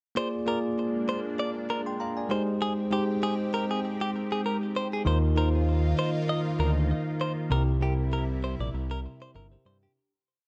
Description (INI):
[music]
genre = afrobeats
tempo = 98 BPM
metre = 4/4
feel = swing 55% on 16ths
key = Bb mixolydian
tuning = A4 = 438 Hz
[part]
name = bell-like tine electric piano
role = accompaniment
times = 0.2-10.1 s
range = C3 to C6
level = -32 LUFS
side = equal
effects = none
[part]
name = lush unison pad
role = sustained chords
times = 0.7-9.9 s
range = C3 to G4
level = -39 LUFS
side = equal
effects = chorus, phaser
[part]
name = direct-recorded clean electric guitar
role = riff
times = 0.2-9.9 s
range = G4 to Eb5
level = -35 LUFS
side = equal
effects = delay
[part]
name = fat analog bass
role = bass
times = 5.1-9.9 s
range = G1 to G2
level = -28 LUFS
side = equal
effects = none
[sound]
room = light reverb, digital ambience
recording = none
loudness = -28 LUFS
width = mono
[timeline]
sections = 0.2-10.0 verse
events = fade-out 7.5-10.0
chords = 0.2 Bb7; 2.3 Abmaj7; 5.1 Ebsus2; 7.5 C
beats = | 0.17 0.78 1.39 2.00 | 2.61 3.23 3.84 4.45 | 5.06 5.67 6.29 6.90 | 7.51 8.12 8.74 9.35